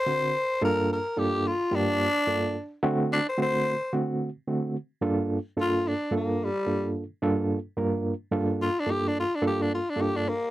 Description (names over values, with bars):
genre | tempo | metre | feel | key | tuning
blues | 109 BPM | 4/4 | swing 55% on 16ths | G minor | A4 = 439 Hz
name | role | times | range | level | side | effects
growling tenor saxophone | melody | 0.0-10.5 s | G3 to C5 | -26 LUFS | left 1 dB | none
overdriven reed electric piano | accompaniment | 0.1-10.3 s | G2 to C5 | -26 LUFS | right 1 dB | fast tremolo
room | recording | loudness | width
light reverb | dry, close 1970s-style studio recording | -24 LUFS | side -15 dB against mid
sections
0.0-4.8 A section; 4.8-10.5 A section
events
tenor saxophone solo 0.0-4.8, 4.8-10.5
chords
0.4 Gm9; 2.6 D7; 4.8 Gm9